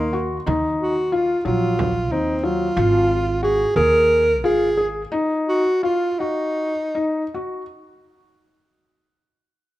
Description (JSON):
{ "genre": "contemporary instrumental, chamber music in an uneven meter", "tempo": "152-184 BPM (eighths)", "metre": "7/8", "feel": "straight", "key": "Eb dorian", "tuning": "A4 = 440 Hz", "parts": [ { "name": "warm alto saxophone", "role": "melody", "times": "0.0-7.3 s", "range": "Bb3 to Bb4", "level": "-20 LUFS", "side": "right 1 dB", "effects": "none" }, { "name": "felt-muted upright piano", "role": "arpeggios", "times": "0.0-7.6 s", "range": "Gb3 to Ab4", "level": "-23 LUFS", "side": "left 3 dB", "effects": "none" }, { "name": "upright bass", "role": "bass", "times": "0.0-5.0 s", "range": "Ab1 to Eb2", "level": "-25 LUFS", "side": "right 2 dB", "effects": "none" }, { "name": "celesta", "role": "texture", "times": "0.0-1.9 s", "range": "C6 to Db6", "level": "-38 LUFS", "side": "left 6 dB", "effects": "none" }, { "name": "frame drum", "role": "percussion", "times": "0.1-2.6 s", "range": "none", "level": "-29 LUFS", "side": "right 3 dB", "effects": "none" } ], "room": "moderate recital hall reverb, RT60 1.9 s", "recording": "none", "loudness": "-18 LUFS", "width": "side -15 dB against mid", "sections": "0.0-7.7 A section", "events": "slowing down 2.8-7.7", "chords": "0.0 Ebmadd9; 2.8 Ab5; 5.1 Ebm" }